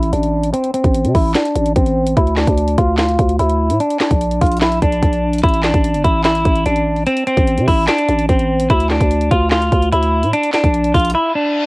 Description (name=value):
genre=hip hop, trap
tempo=147 BPM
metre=4/4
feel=half-time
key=A phrygian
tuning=A4 = 440 Hz
part: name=clean electric guitar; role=melody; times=0.0-11.7 s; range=C4 to F4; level=-16 LUFS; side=equal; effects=low-pass filter, cassette tape
part: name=growling 808-style bass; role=bass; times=0.0-11.1 s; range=G1 to C3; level=-17 LUFS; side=equal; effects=none
part: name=trap drum kit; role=drums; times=0.0-11.1 s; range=handclaps, hi-hat, kick drum, snare drum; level=-17 LUFS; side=equal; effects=cassette tape
part: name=impact and reverse cymbal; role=sound effects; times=0.0-0.5, 11.3-11.7 s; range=none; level=-30 LUFS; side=left 2 dB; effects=none
room=little or no reverb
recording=home recording on cassette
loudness=-13 LUFS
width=side -24 dB against mid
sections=0.0-11.7 A section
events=impact 0.0-0.5; filter sweep on clean electric guitar 0.0-5.4; break 11.1-11.7; reverse cymbal 11.3-11.7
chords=0.0 Am; 2.2 Dm; 3.8 Bb; 5.4 Am; 8.7 Dm; 10.3 Bb